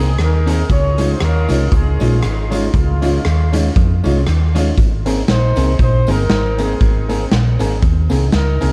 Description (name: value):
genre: ska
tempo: 118 BPM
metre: 4/4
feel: swing 56% on 8ths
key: Ab major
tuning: A4 = 445 Hz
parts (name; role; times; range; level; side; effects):
- clear horn section; melody; 0.0-8.7 s; Ab3 to Db5; -26 LUFS; equal; dub echo
- electric guitar at the edge of break-up; accompaniment; 0.0-8.7 s; Ab3 to Bb4; -26 LUFS; equal; none
- warm upright piano; stabs; 0.0-8.7 s; Bb3 to Ab4; -27 LUFS; equal; dub echo
- hollow-body short-scale fingered electric bass; bass; 0.0-8.7 s; G1 to F2; -18 LUFS; equal; none
- raw garage drum kit; drums; 0.2-8.7 s; hi-hat, kick drum, rim click, snare drum; -21 LUFS; equal; none
- tambourine; percussion; 0.5-8.7 s; none; -45 LUFS; equal; none
room: light reverb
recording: dark, warm production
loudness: -15 LUFS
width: mono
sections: 0.0-8.7 A section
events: none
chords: 0.0 Abadd9; 0.7 Dbadd9; 4.8 Abadd9